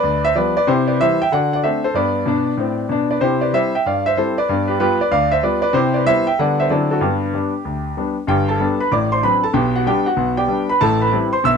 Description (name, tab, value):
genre	jazz, stride piano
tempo	189 BPM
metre	4/4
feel	swing 64% on 8ths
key	G major from 5.7 s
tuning	A4 = 440 Hz
part	clear grand piano	solo	0.0-11.6 s	G1 to E6	-15 LUFS	equal	none
room	moderate studio reverb, RT60 0.5 s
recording	none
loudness	-15 LUFS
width	side -6 dB against mid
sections	0.0-8.3 A section; 8.3-11.6 B section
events	none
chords	0.0 G7; 0.7 C; 1.3 D7; 1.9 G; 3.2 C; 4.5 G7; 5.7 Cmaj7; 6.4 G/D; 6.7 D9; 7.0 G; 8.9 D7/A; 9.5 G/B; 10.8 Am7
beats	0.04 0.36 | 0.67 0.99 1.31 1.62 | 1.94 2.26 2.58 2.89 | 3.21 3.53 3.84 4.16 | 4.48 4.79 5.11 5.43 | 5.74 6.06 6.38 6.69 | 7.01 7.33 7.64 7.96 | 8.28 8.59 8.91 9.23 | 9.54 9.86 10.18 10.49 | 10.81 11.12 11.44